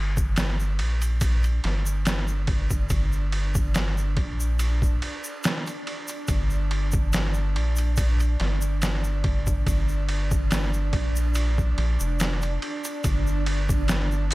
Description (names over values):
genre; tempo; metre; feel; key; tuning
trip hop; 71 BPM; 4/4; swing 54% on 16ths; G minor; A4 = 440 Hz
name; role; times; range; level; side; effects
round analog bass; bass; 0.0-14.3 s; F1 to Bb1; -24 LUFS; equal; none
bowed-like drone; texture; 0.7-14.3 s; D4; -36 LUFS; right 2 dB; built-in reverb
trip hop sampler-style drum kit; drums; 0.2-14.3 s; kick drum, ride cymbal, snare drum; -26 LUFS; equal; overdrive
egg shaker; percussion; 0.2-14.3 s; none; -38 LUFS; equal; none
room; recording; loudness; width
little or no reverb; none; -22 LUFS; side -20 dB against mid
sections
0.0-14.3 A section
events
none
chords
0.0 Gm